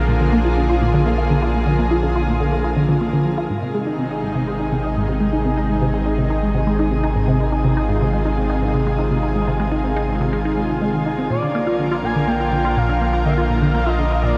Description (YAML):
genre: ambient, sequencer-driven space music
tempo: 123 BPM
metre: 4/4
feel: straight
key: Ab lydian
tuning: A4 = 442 Hz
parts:
  - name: lush unison pad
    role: sustained chords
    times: 0.0-14.4 s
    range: C3 to Bb4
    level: -24 LUFS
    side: equal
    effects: chorus
  - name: warm sub bass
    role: bass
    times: 0.0-14.4 s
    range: Ab1 to Bb1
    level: -25 LUFS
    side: equal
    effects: none
  - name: resonant blip pluck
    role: riff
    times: 0.1-14.4 s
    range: Ab2 to F4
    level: -23 LUFS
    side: equal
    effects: chorus, phaser, delay
  - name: expressive portamento lead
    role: melody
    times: 11.3-14.4 s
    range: D5 to Ab5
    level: -26 LUFS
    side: equal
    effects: subtle chorus, delay
room: moderate shimmer reverb, RT60 7.5 s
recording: dark, warm production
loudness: -19 LUFS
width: mono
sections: 0.0-3.5 A section; 3.5-14.4 B section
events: none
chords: 0.0 Bb; 3.5 Ab; 11.3 Bb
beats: 0.09 0.57 1.06 | 1.55 2.04 2.53 3.01 | 3.50 3.99 4.48 4.96 | 5.45 5.94 6.43 6.92 | 7.40 7.89 8.38 8.87 | 9.36 9.84 10.33 10.82 | 11.31 11.79 12.28 12.77 | 13.26 13.74 14.23